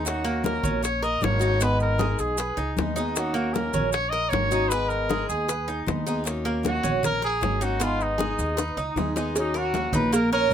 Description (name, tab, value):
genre	latin, Cuban son and guajira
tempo	155 BPM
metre	4/4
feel	straight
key	Eb minor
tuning	A4 = 440 Hz
part	picked acoustic archtop guitar	accompaniment	0.0-10.5 s	Eb3 to Ab4	-30 LUFS	left 3 dB	none
part	Cuban tres	arpeggios	0.0-10.5 s	Bb3 to Cb5	-29 LUFS	right 3 dB	none
part	upright bass	bass	0.0-10.5 s	Ab1 to Eb2	-29 LUFS	equal	none
part	warm trumpet	melody	0.1-10.5 s	Eb4 to Eb5	-27 LUFS	equal	none
part	bongos and cowbell	percussion	0.1-10.3 s	none	-30 LUFS	left 4 dB	none
part	congas	percussion	0.1-10.5 s	none	-32 LUFS	equal	none
part	maracas	percussion	0.1-10.5 s	none	-36 LUFS	right 4 dB	none
room	light reverb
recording	none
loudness	-22 LUFS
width	side -9 dB against mid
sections	0.0-9.4 A section; 9.4-10.5 B section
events	drum fill 8.6-9.4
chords	0.1 Ebm7; 1.6 Abm; 3.2 Ebm7; 4.7 Abm; 6.3 Ebm7; 7.8 Abm; 9.4 Ebm7